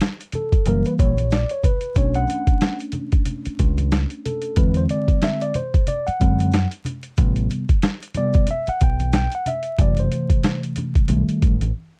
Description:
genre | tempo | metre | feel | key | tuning
hip hop, jazz-hop | 92 BPM | 4/4 | swing 58% on 16ths | E minor | A4 = 440 Hz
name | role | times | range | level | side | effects
boom bap sampler-style drum kit | drums | 0.0-11.7 s | hi-hat, kick drum, snare drum | -21 LUFS | equal | none
maracas and congas | percussion | 0.0-11.7 s | none | -34 LUFS | equal | none
mellow tine electric piano | accompaniment | 0.4-11.6 s | C3 to G5 | -26 LUFS | equal | none
deep dub fingered electric bass | bass | 0.7-11.7 s | F#1 to F#2 | -23 LUFS | equal | none
room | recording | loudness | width
little or no reverb | dark, warm production, vinyl crackle | -20 LUFS | mono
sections
0.0-12.0 A section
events
tine electric piano solo 0.0-12.0; break 11.8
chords
0.0 N.C.; 0.7 F#7b9; 2.0 Bm9 (rootless); 4.6 E7b13; 7.2 Am9 (rootless); 9.8 F#m7b5; 11.1 B7b13

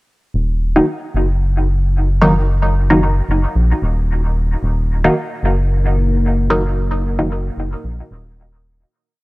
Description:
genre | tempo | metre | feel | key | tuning
dub techno | 112 BPM | 4/4 | swing 56% on 16ths | Eb minor | A4 = 440 Hz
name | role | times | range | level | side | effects
round analog bass | bass | 0.3-8.8 s | Eb1 to Bb1 | -16 LUFS | equal | none
filtered dub chord stab | stabs | 0.8-7.3 s | Eb3 to Eb4 | -17 LUFS | equal | chorus, phaser, dub echo
deep dark ambient pad | sustained chords | 5.6-8.9 s | Bb3 to Bb4 | -25 LUFS | left 2 dB | chorus, built-in reverb
room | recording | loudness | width
little or no reverb | dry, gritty hardware recording, cassette tape | -14 LUFS | side -21 dB against mid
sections
0.3-8.9 groove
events
fade-out 6.1-8.9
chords
0.3 Ebm

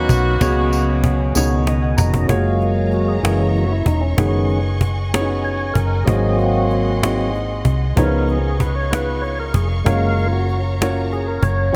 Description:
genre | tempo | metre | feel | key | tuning
slow gospel | 64 BPM (dotted quarters) | 6/8 | straight | F# major | A4 = 436 Hz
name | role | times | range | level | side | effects
clear saxophone section | melody | 0.0-1.6 s | A#3 to F#4 | -24 LUFS | equal | none
warm upright piano | accompaniment | 0.0-11.8 s | G#2 to A#5 | -26 LUFS | equal | none
tonewheel organ | sustained chords | 0.0-11.8 s | B2 to G#5 | -24 LUFS | equal | overdrive, chorus vibrato, slow rotary speaker
hollow-body short-scale fingered electric bass | bass | 0.0-11.7 s | E1 to C#2 | -22 LUFS | equal | none
cajon | drums | 0.1-11.6 s | none | -22 LUFS | equal | none
tambourine | percussion | 0.1-2.3 s | none | -31 LUFS | equal | none
warm studio string section | sustained chords | 2.3-11.7 s | C#5 to C#6 | -34 LUFS | equal | none
room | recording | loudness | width
moderate plate reverb, RT60 2.1 s | bright 1980s-style digital production | -18 LUFS | mono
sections
0.0-2.3 A section; 2.3-11.8 B section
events
drum fill 1.4-2.3; upright piano fill 1.4-2.3; tonewheel organ fill 1.4-2.3; tonewheel organ solo 2.3-11.8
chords
0.4 C#7sus4; 1.4 C#9sus4; 2.3 F#maj9; 3.2 F#7; 4.2 B69/F#; 6.1 G#7; 8.0 C#9; 9.9 F#maj7

